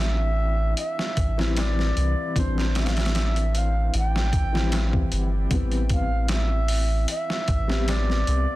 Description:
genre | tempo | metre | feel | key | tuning
trip hop | 76 BPM | 4/4 | swing 53% on 16ths | unclear | A4 = 440 Hz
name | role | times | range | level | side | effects
bright reedy baroque flute | melody | 0.0-8.6 s | C5 to G5 | -30 LUFS | right 1 dB | dub echo
felt-muted upright piano | accompaniment | 0.0-8.6 s | E3 to G4 | -30 LUFS | left 2 dB | tremolo, vintage 12-bit sampler grit, tape echo
soft dub sub bass | bass | 0.0-8.5 s | G1 to C2 | -23 LUFS | equal | none
trip hop sampler-style drum kit | drums | 0.8-8.5 s | hi-hat, kick drum, snare drum | -27 LUFS | equal | overdrive, small room ambience
room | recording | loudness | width
small room reverb | dense, heavily limited modern master | -21 LUFS | side -17 dB against mid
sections
0.0-8.6 A section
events
none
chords
0.0 Cadd9/A; 5.5 Am7

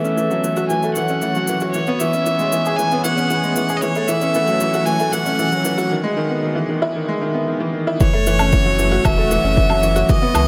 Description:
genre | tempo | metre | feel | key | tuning
piano and strings electronica | 115 BPM | 4/4 | straight | F# dorian | A4 = 438 Hz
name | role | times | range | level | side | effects
clear violin | melody | 0.0-10.5 s | C#5 to G#5 | -23 LUFS | equal | low-pass filter, delay
lush unison pad | sustained chords | 0.0-10.5 s | E3 to E5 | -30 LUFS | equal | chorus, sidechain pumping
bright upright piano | riff | 0.0-10.5 s | D#3 to G#4 | -22 LUFS | equal | delay
warm sub bass | bass | 0.0-10.5 s | E1 to F#2 | -25 LUFS | equal | tube saturation, sidechain pumping, high-pass filter
shaker and woodblock | drums | 0.0-10.5 s | none | -29 LUFS | equal | none
electronic kick drum | drums | 8.0-10.2 s | none | -19 LUFS | equal | none
room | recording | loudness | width
moderate huge ambient reverb, RT60 7.4 s | none | -18 LUFS | mono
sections
0.0-8.0 A section; 8.0-10.5 B section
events
build-up 0.0-8.0; filter sweep on analog synth pad 0.0-8.0; break 5.9-8.0; drop 8.0-10.5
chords
0.0 F#m7; 1.7 C#m7; 3.8 F#m7; 5.9 Emaj7; 8.0 F#m7

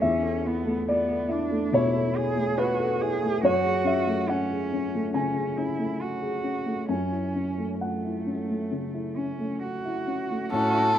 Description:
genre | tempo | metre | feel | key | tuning
neoclassical piano and strings | 66-71 BPM | 4/4 | rubato | F# minor | A4 = 440 Hz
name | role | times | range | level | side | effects
muted cello | second line | 0.0-11.0 s | A3 to G#4 | -30 LUFS | right 4 dB | none
dark baby grand piano | accompaniment | 0.0-11.0 s | E2 to G#5 | -26 LUFS | left 2 dB | none
muted violin | melody | 10.5-11.0 s | A4 | -22 LUFS | left 1 dB | none
muted viola | accompaniment | 10.5-11.0 s | C#4 | -31 LUFS | right 1 dB | none
room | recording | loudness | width
moderate plate reverb, RT60 2.6 s | rough home demo mix | -24 LUFS | side -10 dB against mid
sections
0.0-10.5 A section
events
none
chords
0.0 Esus4; 3.4 F#madd9

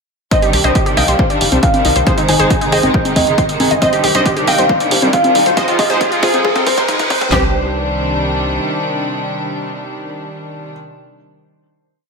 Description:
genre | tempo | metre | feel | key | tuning
uplifting trance | 137 BPM | 4/4 | straight | C minor | A4 = 438 Hz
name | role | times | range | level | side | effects
wide unison pluck | melody | 0.3-10.7 s | Eb4 to G5 | -18 LUFS | equal | sidechain pumping, analog delay
felt-muted upright piano | second line | 0.3-10.7 s | C5 to Ab5 | -18 LUFS | equal | lush chorus, analog delay
rich studio string section | sustained chords | 0.3-10.7 s | C3 to Eb4 | -20 LUFS | equal | sidechain pumping
wide unison pluck | arpeggios | 0.3-7.5 s | C4 to C6 | -21 LUFS | left 3 dB | analog chorus, sidechain pumping, analog delay
electronic hi-hat and congas | drums | 0.3-7.3 s | none | -20 LUFS | right 1 dB | none
techno drum kit | drums | 0.3-7.4 s | handclaps, kick drum, snare drum | -18 LUFS | equal | none
riser | sound effects | 3.3-7.3 s | none | -24 LUFS | equal | none
tight sequencer bass | bass | 0.5-8.6 s | G1 to F2 | -21 LUFS | equal | sidechain pumping
room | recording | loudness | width
moderate plate reverb, RT60 1.7 s | dreamy mix soaked in reverb, high-pass filter | -12 LUFS | side -4 dB against mid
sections
0.3-7.3 build; 7.3-10.8 final chord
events
build-up 0.3-7.3; filter sweep 0.3-7.3; riser 3.3-7.3; drum fill 3.8-7.3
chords
0.3 Cmadd9; 2.1 Ab; 3.8 Cmadd9; 5.6 Fm7; 7.3 Cmadd9

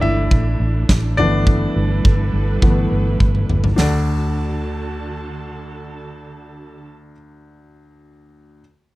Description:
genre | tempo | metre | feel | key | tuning
piano-driven pop | 104 BPM | 4/4 | straight | D major | A4 = 443 Hz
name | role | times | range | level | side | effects
clear baby grand piano | accompaniment | 0.0-8.6 s | D2 to E5 | -23 LUFS | left 2 dB | none
warm studio string section | sustained chords | 0.0-6.9 s | D3 to A5 | -29 LUFS | right 5 dB | none
vintage muted fingered electric bass | bass | 0.0-7.1 s | G1 to D2 | -19 LUFS | equal | none
huge arena drum kit | drums | 0.0-3.9 s | handclaps, hi-hat, kick drum, snare drum, toms | -18 LUFS | equal | none
room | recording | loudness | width
little or no reverb | dry, close 1970s-style studio recording | -15 LUFS | side -18 dB against mid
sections
0.0-3.8 A section; 3.8-6.1 B section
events
grand piano solo 0.0-3.8; drum fill 3.2-3.8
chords
0.0 Asus4; 1.2 G6; 3.8 D

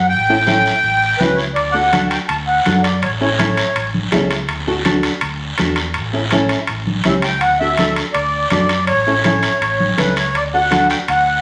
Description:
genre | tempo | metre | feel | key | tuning
latin, cumbia | 164 BPM | 4/4 | straight | D major | A4 = 437 Hz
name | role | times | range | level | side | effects
accordion | melody | 0.0-3.9, 7.1-11.4 s | B4 to A5 | -18 LUFS | equal | light tremolo tuning
fingered electric bass | bass | 0.0-11.4 s | A1 to F#2 | -26 LUFS | equal | none
guiro | percussion | 0.1-11.4 s | none | -28 LUFS | equal | none
flamenco guitar | accompaniment | 0.3-11.0 s | C#4 to A4 | -23 LUFS | equal | none
congas | percussion | 0.5-10.9 s | none | -24 LUFS | equal | none
timbales | percussion | 1.6-11.3 s | none | -25 LUFS | equal | none
room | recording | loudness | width
wet large studio reverb, RT60 0.9 s | none | -16 LUFS | mono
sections
0.0-11.4 A section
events
none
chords
0.1 A7; 1.6 D; 3.0 A; 4.5 D; 6.0 A7; 7.4 D; 8.9 A; 10.3 D

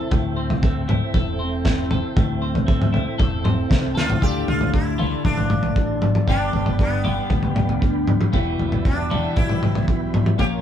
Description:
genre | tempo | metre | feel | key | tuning
psychedelic rock | 117 BPM | 4/4 | straight | D dorian | A4 = 441 Hz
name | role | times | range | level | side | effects
mellow tonewheel organ | sustained chords | 0.0-10.6 s | A4 to B5 | -34 LUFS | right 4 dB | slow rotary speaker, chorus vibrato
twelve-string electric guitar | riff | 0.0-10.6 s | D2 to Bb4 | -25 LUFS | left 1 dB | phaser
fingered electric bass | bass | 0.1-10.6 s | E1 to D2 | -27 LUFS | equal | none
cloth-damped thuddy drum kit | drums | 0.1-10.5 s | kick drum, snare drum, toms | -20 LUFS | equal | none
sitar | melody | 4.0-10.5 s | B3 to G4 | -27 LUFS | equal | none
room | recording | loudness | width
light reverb | band playing live in one room | -18 LUFS | side -10 dB against mid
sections
0.0-4.2 A section; 4.2-10.6 B section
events
drum fill 4.0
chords
0.0 Am; 4.2 Dm; 6.3 G; 8.3 Em

